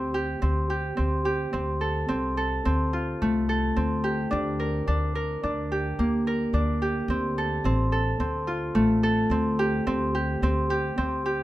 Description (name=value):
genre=contemporary instrumental, chamber music in an uneven meter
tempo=108 BPM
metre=5/4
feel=straight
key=unclear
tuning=A4 = 440 Hz
part: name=Celtic harp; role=arpeggios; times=0.0-11.4 s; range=A3 to Bb4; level=-25 LUFS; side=equal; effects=none
part: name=upright bass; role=bass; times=0.0-11.4 s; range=A1 to D2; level=-28 LUFS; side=equal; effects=none
room=light reverb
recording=close, detailed microphones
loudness=-23 LUFS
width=side -15 dB against mid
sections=0.0-11.4 A section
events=none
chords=0.0 Gsus4/D; 1.5 F; 4.3 Gm/D; 7.1 Dm7; 9.9 Gsus4/D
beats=0.42 0.98 | 1.53 2.09 2.65 3.20 3.76 | 4.31 4.87 5.42 5.98 6.53 | 7.09 7.64 8.20 8.76 9.31 | 9.87 10.42 10.97